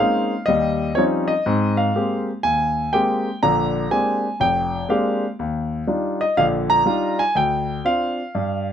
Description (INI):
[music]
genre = solo jazz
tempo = 122 BPM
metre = 4/4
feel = swing 66% on 8ths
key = unclear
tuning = A4 = 440 Hz
[part]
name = warm grand piano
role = solo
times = 0.0-8.7 s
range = F1 to Bb5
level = -18 LUFS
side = equal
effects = none
[sound]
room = little or no reverb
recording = close, detailed microphones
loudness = -18 LUFS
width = side -9 dB against mid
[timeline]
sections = 0.0-8.7 A section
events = none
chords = 0.5 Eb13; 1.5 Abmaj9; 3.4 Bb13; 5.4 Ebmaj9; 7.4 Dmadd11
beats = 0.47 0.96 | 1.46 1.95 2.44 2.93 | 3.43 3.92 4.41 4.90 | 5.39 5.88 6.38 6.87 | 7.36 7.85 8.35